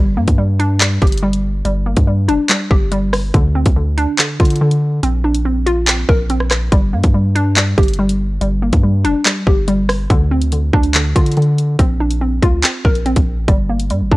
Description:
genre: hip hop, drill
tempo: 142 BPM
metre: 4/4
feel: half-time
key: unclear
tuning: A4 = 440 Hz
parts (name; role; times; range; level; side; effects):
- hollow square pluck; accompaniment; 0.0-14.2 s; D3 to Bb4; -18 LUFS; equal; chorus
- long sustained 808-style bass; bass; 0.0-14.2 s; F1 to D3; -17 LUFS; equal; none
- drill drum kit; drums; 0.3-14.2 s; handclaps, hi-hat, kick drum, rim click; -14 LUFS; equal; vintage 12-bit sampler grit
room: little or no reverb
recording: dry, gritty hardware recording, cassette tape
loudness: -12 LUFS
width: side -19 dB against mid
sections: 0.0-10.1 A section; 10.1-14.2 B section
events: none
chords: 0.0 Gm; 3.3 Dm7; 5.0 Bbadd9; 6.7 Gm; 10.1 Dm7; 11.8 Bbadd9; 13.5 Gm

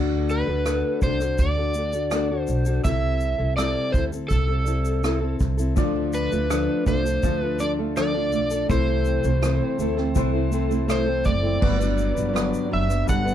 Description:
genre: acoustic pop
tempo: 82 BPM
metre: 4/4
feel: straight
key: unclear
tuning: A4 = 441 Hz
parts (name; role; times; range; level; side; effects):
- fingerpicked plugged-in steel-string acoustic guitar; accompaniment; 0.0-13.3 s; G2 to B4; -26 LUFS; left 4 dB; none
- upright bass; bass; 0.0-13.3 s; F#1 to D2; -25 LUFS; right 1 dB; none
- overdriven slide guitar; melody; 0.3-13.3 s; A4 to F#5; -27 LUFS; right 1 dB; none
- unplugged drum kit; drums; 0.3-13.3 s; crash cymbal, kick drum, rim click, shaker; -28 LUFS; right 1 dB; none
- bright upright piano; accompaniment; 5.8-13.3 s; G3 to D5; -33 LUFS; left 6 dB; none
- flamenco guitar; arpeggios; 5.8-13.3 s; E3 to F#4; -30 LUFS; right 11 dB; none
room: moderate studio reverb, RT60 0.5 s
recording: dark, warm production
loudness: -20 LUFS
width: side -10 dB against mid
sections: 0.0-11.6 A section; 11.6-13.3 B section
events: none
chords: 0.0 D; 2.9 C6; 5.8 Dm; 8.7 Am/C; 11.6 Gmaj7

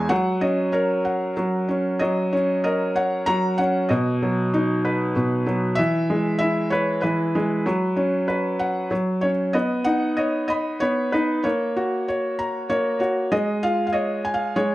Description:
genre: children's music, lullaby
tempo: 96 BPM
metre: 3/4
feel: straight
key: B major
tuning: A4 = 440 Hz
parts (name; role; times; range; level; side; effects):
- felt-muted upright piano; solo; 0.0-14.7 s; E2 to B5; -20 LUFS; equal; none
room: light reverb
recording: close, detailed microphones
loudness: -20 LUFS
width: side -17 dB against mid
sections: 0.0-9.6 A section; 9.6-14.7 B section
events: none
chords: 0.1 F#; 3.9 B; 5.8 E; 7.7 F#sus4; 8.9 F#5; 9.6 Badd9; 11.5 F#/A#; 13.3 C#/G#

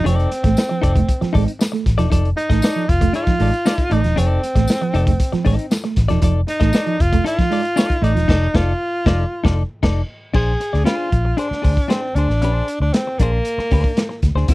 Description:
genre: funk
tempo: 117 BPM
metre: 4/4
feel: straight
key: unclear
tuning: A4 = 438 Hz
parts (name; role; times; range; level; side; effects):
- breathy tenor saxophone; melody; 0.0-14.5 s; Bb3 to Bb4; -22 LUFS; equal; none
- semi-hollow electric guitar; accompaniment; 0.0-14.5 s; Db4 to Eb5; -24 LUFS; left 5 dB; none
- mellow electric guitar; riff; 0.0-8.3 s; F3 to A3; -22 LUFS; right 6 dB; lush chorus
- vintage muted fingered electric bass; bass; 0.0-14.5 s; E1 to Eb2; -18 LUFS; equal; none
- crunchy breakbeat drum kit; drums; 0.1-14.5 s; crash cymbal, hi-hat, kick drum, snare drum; -19 LUFS; equal; none
- tambourine; percussion; 0.6-7.9 s; none; -33 LUFS; left 3 dB; none
room: little or no reverb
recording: dry, close 1970s-style studio recording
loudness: -15 LUFS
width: side -19 dB against mid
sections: 0.0-10.3 A section; 10.3-14.5 B section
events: band accent 8.3-10.3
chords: 0.0 F6; 10.3 Bb9

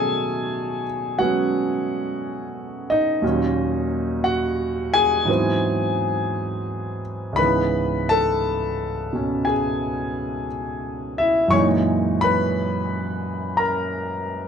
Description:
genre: solo jazz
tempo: 58 BPM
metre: 4/4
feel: swing 69% on 8ths, rubato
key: B major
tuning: A4 = 440 Hz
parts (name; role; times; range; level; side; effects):
- warm grand piano; solo; 0.0-14.5 s; C#2 to C#6; -20 LUFS; equal; none
room: moderate club reverb, RT60 0.8 s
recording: none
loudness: -20 LUFS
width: side -7 dB against mid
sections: 0.0-14.5 A section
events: none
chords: 0.0 B13; 3.2 D#m7; 5.3 G#7alt; 7.4 C#m7; 11.5 F#13

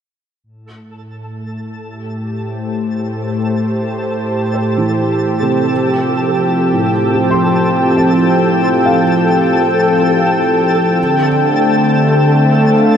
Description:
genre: ambient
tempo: 68 BPM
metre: 3/4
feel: straight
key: A minor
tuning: A4 = 440 Hz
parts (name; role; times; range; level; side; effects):
- warm analog pad; sustained chords; 0.4-13.0 s; A2 to G5; -13 LUFS; equal; chorus
- twinkling granular texture; texture; 0.9-13.0 s; A4 to A5; -21 LUFS; right 1 dB; built-in reverb
- felt-muted upright piano; arpeggios; 4.5-13.0 s; A2 to C6; -19 LUFS; right 1 dB; diffuse ambient delay
room: wet huge ambient reverb, RT60 8.1 s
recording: none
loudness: -11 LUFS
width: side -8 dB against mid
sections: 0.5-13.0 A section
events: fade-in on analog synth pad 0.5-13.0; fade-in on felt piano 0.5-13.0; fade-in on synth texture 0.5-13.0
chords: 0.5 Am7; 5.7 F; 11.0 Dm7

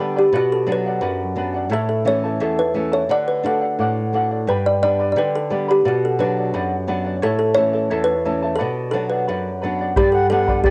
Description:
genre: andean folk, Andean ensemble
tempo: 87 BPM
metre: 2/4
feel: straight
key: B minor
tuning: A4 = 440 Hz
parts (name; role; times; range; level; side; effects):
- charango; accompaniment; 0.0-10.7 s; E4 to B5; -27 LUFS; equal; cassette tape
- flamenco guitar; accompaniment; 0.0-10.7 s; E2 to F#4; -25 LUFS; equal; cassette tape
- kalimba; melody; 0.2-10.7 s; F#4 to D5; -22 LUFS; equal; none
- breathy bright large quena; second line; 10.0-10.7 s; D5 to F#5; -24 LUFS; equal; cassette tape
- bombo; percussion; 10.0-10.7 s; none; -23 LUFS; equal; none
room: moderate spring reverb, RT60 1.1 s, studio reverb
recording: home recording on cassette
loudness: -20 LUFS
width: mono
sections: 0.0-10.0 A section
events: none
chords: 0.3 Bm; 1.7 A; 3.1 D; 4.5 G; 5.8 Bm; 7.2 A; 8.6 Bm; 10.0 G

